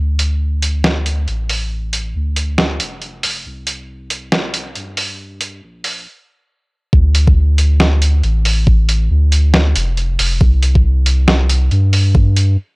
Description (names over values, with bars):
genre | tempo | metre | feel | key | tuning
deep dubstep | 138 BPM | 4/4 | swing 59% on 16ths, half-time | D minor | A4 = 436 Hz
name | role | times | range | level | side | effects
soft dub sub bass | bass | 0.0-12.6 s | F1 to G2 | -14 LUFS | equal | none
trip hop sampler-style drum kit | drums | 0.2-12.5 s | hi-hat, snare drum | -17 LUFS | right 1 dB | none
electronic kick drum | drums | 6.9-12.2 s | none | -11 LUFS | equal | none
room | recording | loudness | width
digital ambience | dry, gritty hardware recording, cassette tape, high-pass filter | -12 LUFS | side -29 dB against mid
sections
0.0-6.9 A section; 6.9-12.8 B section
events
build-up 0.0-6.9; filter sweep 0.0-6.9; stop 6.1-6.9; drop 6.9-12.8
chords
none